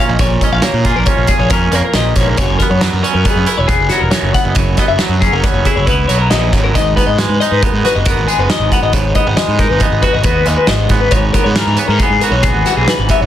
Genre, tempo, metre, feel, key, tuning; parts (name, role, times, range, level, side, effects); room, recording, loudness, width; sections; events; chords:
math rock and midwest emo; 137 BPM; 5/4; straight; A4 = 440 Hz
twangy electric guitar; accompaniment; 0.0-13.3 s; E2 to G#4; -18 LUFS; right 8 dB; tremolo
twelve-string electric guitar; arpeggios; 0.0-13.3 s; F#4 to F#5; -16 LUFS; left 7 dB; tremolo
fuzz picked electric bass; bass; 0.1-13.3 s; E1 to A#2; -16 LUFS; equal; overdrive
loose indie drum kit; drums; 0.2-13.2 s; hi-hat, kick drum, snare drum; -16 LUFS; equal
light reverb; dense, heavily limited modern master; -10 LUFS; side -11 dB against mid
0.0-13.3 A section
0.0 A#m7; 2.4 F#7sus4; 6.7 G#m7; 11.1 C#m7/G#